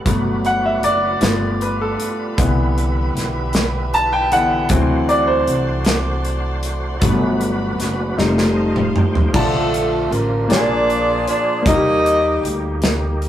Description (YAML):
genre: slow gospel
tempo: 52 BPM (dotted quarters)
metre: 6/8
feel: straight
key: G major, Bb major from 9.3 s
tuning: A4 = 440 Hz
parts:
  - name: bright upright piano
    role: accompaniment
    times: 0.0-13.3 s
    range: Bb2 to A5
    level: -19 LUFS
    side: left 1 dB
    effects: none
  - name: bright chamber string section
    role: sustained chords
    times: 0.0-9.3 s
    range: G4 to C6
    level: -34 LUFS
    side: left 3 dB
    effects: none
  - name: overdriven tonewheel organ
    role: sustained chords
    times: 0.0-13.3 s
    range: F3 to G5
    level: -28 LUFS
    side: right 2 dB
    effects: slow rotary speaker, chorus vibrato
  - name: upright bass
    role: bass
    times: 0.1-13.3 s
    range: F1 to Eb2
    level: -22 LUFS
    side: equal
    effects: none
  - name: modern studio drum kit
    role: drums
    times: 0.1-13.3 s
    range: crash cymbal, hi-hat, kick drum, snare drum, toms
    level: -20 LUFS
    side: equal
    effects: none
  - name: breathy tenor saxophone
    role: melody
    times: 9.3-12.5 s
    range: A3 to Eb4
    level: -23 LUFS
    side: right 4 dB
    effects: slapback echo
  - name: clear saxophone section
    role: melody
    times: 9.3-12.8 s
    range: D4 to Eb5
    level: -19 LUFS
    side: equal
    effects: none
room: wet studio reverb, RT60 0.6 s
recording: rough rehearsal-room recording, tube saturation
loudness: -15 LUFS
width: side -11 dB against mid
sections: 0.1-9.3 A section; 9.3-13.3 B section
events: upright piano solo 0.1-9.3; drum fill 8.2-9.3; tonewheel organ fill 8.2-9.3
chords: 0.0 Gmaj9; 1.2 G7; 2.4 Cmaj7; 4.7 D7; 7.0 Gmaj7; 8.2 F7; 9.3 Bbmaj7; 10.5 Bb7; 11.7 Ebmaj7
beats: | 0.06 1.22 | 2.38 3.54 | 4.70 5.86 | 7.02 8.18 | 9.34 10.50 | 11.65 12.81